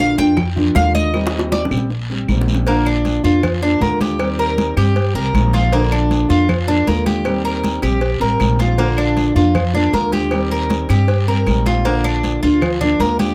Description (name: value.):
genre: latin, Cuban son and guajira.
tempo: 157 BPM.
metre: 4/4.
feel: straight.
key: Bb major.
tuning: A4 = 443 Hz.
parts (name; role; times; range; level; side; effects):
fingerpicked steel-string acoustic guitar; accompaniment; 0.0-13.3 s; D3 to F4; -21 LUFS; equal; none.
Cuban tres; arpeggios; 0.0-13.3 s; Bb3 to G5; -23 LUFS; equal; none.
upright bass; bass; 0.0-13.3 s; A1 to G2; -21 LUFS; equal; none.
guiro; percussion; 0.0-13.3 s; none; -35 LUFS; equal; none.
bongos and cowbell; percussion; 0.2-13.3 s; none; -29 LUFS; equal; none.
congas; percussion; 0.2-13.3 s; none; -25 LUFS; equal; none.
claves; percussion; 0.4-12.8 s; none; -33 LUFS; equal; none.
room: little or no reverb.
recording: none.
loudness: -16 LUFS.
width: mono.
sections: 0.0-2.7 A section; 2.7-13.3 B section.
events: Cuban tres solo 0.0-2.7; drum fill 1.1-2.7.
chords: 0.0 Bb; 1.1 Eb6; 2.7 Bb; 4.2 Eb6; 5.7 Bb; 7.3 Eb6; 8.8 Bb; 10.3 Eb6; 11.9 Bb.